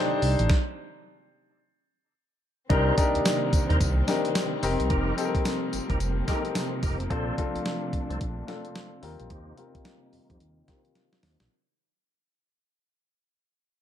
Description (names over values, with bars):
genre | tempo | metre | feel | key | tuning
R&B, new jack swing | 109 BPM | 4/4 | swing 62% on 16ths | unclear | A4 = 441 Hz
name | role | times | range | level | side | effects
warm grand piano | accompaniment | 0.0-11.5 s | C4 to C5 | -29 LUFS | left 3 dB | low-pass filter
warm studio string section | sustained chords | 0.0-11.5 s | C3 to D5 | -34 LUFS | right 1 dB | low-pass filter
smooth gliding synth bass | bass | 0.2-11.5 s | F1 to F2 | -28 LUFS | equal | none
crisp 8-bit digital drum machine | drums | 0.2-11.5 s | hi-hat, kick drum, snare drum, tambourine | -28 LUFS | equal | none
percussive tonewheel organ | stabs | 2.7-11.4 s | D4 to C5 | -35 LUFS | right 2 dB | overdrive, chorus vibrato, fast rotary speaker, low-pass filter
room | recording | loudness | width
moderate plate reverb, RT60 1.5 s | dark, warm production | -24 LUFS | side -10 dB against mid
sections
0.0-2.7 A section; 2.7-11.5 B section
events
stop 0.5-2.7; fade-out 2.7-11.5; filter sweep 2.7-11.5; drum fill 11.0-11.5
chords
0.5 N.C.; 2.7 Cm7; 4.6 F9sus4; 7.1 Bbmaj9; 9.0 Eb6